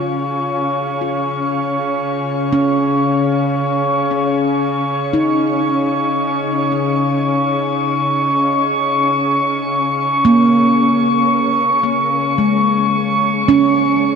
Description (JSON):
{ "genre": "ambient", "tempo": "free time", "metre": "none", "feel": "none", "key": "Db major", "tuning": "A4 = 444 Hz", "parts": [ { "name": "handpan", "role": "arpeggios", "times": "0.0-14.2 s", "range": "Ab3 to F4", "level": "-18 LUFS", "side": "right 1 dB", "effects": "ping-pong delay" }, { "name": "bowed-like drone", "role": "drone", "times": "0.0-14.2 s", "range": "Db3 to Db4", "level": "-19 LUFS", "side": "left 1 dB", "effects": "built-in reverb" }, { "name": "glass harmonica", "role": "texture", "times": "0.0-14.2 s", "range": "Db6", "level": "-18 LUFS", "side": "equal", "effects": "none" } ], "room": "wet shimmer reverb, RT60 8.0 s", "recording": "cassette tape", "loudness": "-14 LUFS", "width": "side -6 dB against mid", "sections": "0.0-14.2 A section", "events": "fade-in on handpan 0.0-14.2; fade-in on synth drone 0.0-14.2; fade-in on glass harmonica 0.0-14.2", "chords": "0.0 Db; 1.3 N.C.; 4.4 Dbsus2; 7.6 Bbm/Db; 10.7 Db5", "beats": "free time" }